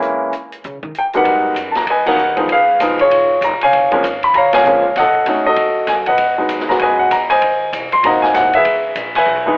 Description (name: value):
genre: jazz piano trio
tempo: 195 BPM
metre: 4/4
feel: swing 62% on 8ths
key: G# minor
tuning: A4 = 441 Hz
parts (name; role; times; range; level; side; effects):
- warm baby grand piano; melody; 0.0-9.6 s; Fb3 to B#5; -12 LUFS; equal; plate reverb
- open jazz drum kit; drums; 0.0-9.2 s; crash cymbal, hi-hat, kick drum, ride cymbal, snare drum; -24 LUFS; equal; none
- upright bass; bass; 0.6-9.6 s; E#1 to Eb3; -32 LUFS; equal; none
room: moderate club reverb, RT60 0.7 s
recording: telephone sound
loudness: -12 LUFS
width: side -26 dB against mid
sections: 0.0-1.3 A section; 1.3-9.6 B section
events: upright bass solo 0.0-1.3; band accent 2.0, 4.5, 9.1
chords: 0.0 Bbm7b5; 0.6 Eb7; 1.3 G#m9; 2.5 C#7; 3.7 F#maj7; 5.0 B7; 6.2 Emaj9; 7.4 G#7; 8.7 C#m7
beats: | 0.02 0.33 0.64 0.95 | 1.26 1.56 1.87 2.18 | 2.49 2.80 3.11 3.42 | 3.72 4.03 4.34 4.65 | 4.96 5.27 5.57 5.88 | 6.19 6.50 6.81 7.12 | 7.42 7.73 8.04 8.35 | 8.66 8.96 9.27